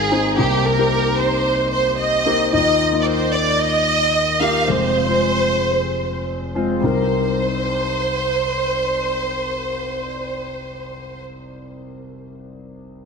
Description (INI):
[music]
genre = pop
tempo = 112 BPM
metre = 4/4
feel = straight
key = C minor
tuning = A4 = 439 Hz
[part]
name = warm symphonic violin section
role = melody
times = 0.0-11.2 s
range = G4 to F5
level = -19 LUFS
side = right 2 dB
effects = none
[part]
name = warm concert grand piano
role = accompaniment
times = 0.0-13.1 s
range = F1 to F5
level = -21 LUFS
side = left 2 dB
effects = analog chorus
[sound]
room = wet lush hall reverb, RT60 2.5 s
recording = bright 1980s-style digital production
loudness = -17 LUFS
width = side -5 dB against mid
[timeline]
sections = 0.0-6.8 A section; 6.8-11.1 B section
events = none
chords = 0.4 Cm7; 2.5 Ebsus2; 4.7 Fm; 6.8 Cm7